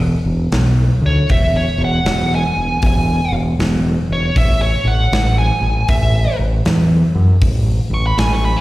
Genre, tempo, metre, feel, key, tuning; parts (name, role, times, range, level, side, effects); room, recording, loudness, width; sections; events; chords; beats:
blues rock power trio and southern rock; 78 BPM; 4/4; swing 64% on 8ths; E mixolydian; A4 = 440 Hz
growling fingered electric bass; bass; 0.0-8.5 s; E1 to F#2; -15 LUFS; equal; overdrive
big rock drum kit; drums; 0.5-8.4 s; hi-hat, kick drum, snare drum; -20 LUFS; equal
smooth overdriven lead guitar; melody; 1.1-8.6 s; C#5 to C#6; -20 LUFS; right 1 dB; slapback echo
small room ambience; live gig heard through the venue's PA, recital hall reverb; -13 LUFS; side -17 dB against mid
0.0-8.6 A section
lead electric guitar solo 0.0-8.6
0.0 E; 4.4 A5
0.54 | 1.31 2.07 2.84 3.60 | 4.37 5.13 5.90 6.66 | 7.42 8.19